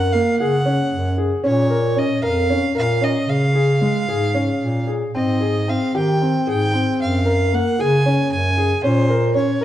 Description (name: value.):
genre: contemporary instrumental, contemporary.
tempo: 228 BPM (eighths).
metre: 7/8.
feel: straight.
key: unclear.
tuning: A4 = 440 Hz.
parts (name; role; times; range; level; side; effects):
warm violin; melody; 0.0-9.6 s; C5 to Ab5; -24 LUFS; right 1 dB; none.
warm concert grand piano; arpeggios; 0.0-9.6 s; Ab3 to Bb4; -20 LUFS; left 1 dB; none.
mellow bass clarinet; bass; 0.0-9.6 s; F2 to Eb3; -20 LUFS; equal; none.
room: moderate recital hall reverb, RT60 1.6 s.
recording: dark, warm production.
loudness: -16 LUFS.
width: side -12 dB against mid.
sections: 0.0-9.6 A section.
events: none.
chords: 0.0 Gbadd9; 1.4 Bbm; 3.3 Db; 5.1 Abmaj7; 7.0 Gbadd9; 8.8 Bbm.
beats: 0.13 0.39 0.65 0.91 1.17 | 1.44 1.70 1.96 2.23 2.49 2.75 3.02 | 3.28 3.55 3.81 4.08 4.35 4.61 4.88 | 5.15 5.41 5.68 5.94 6.21 6.47 6.74 | 7.00 7.26 7.53 7.79 8.05 8.31 8.58 | 8.84 9.10 9.36 9.62.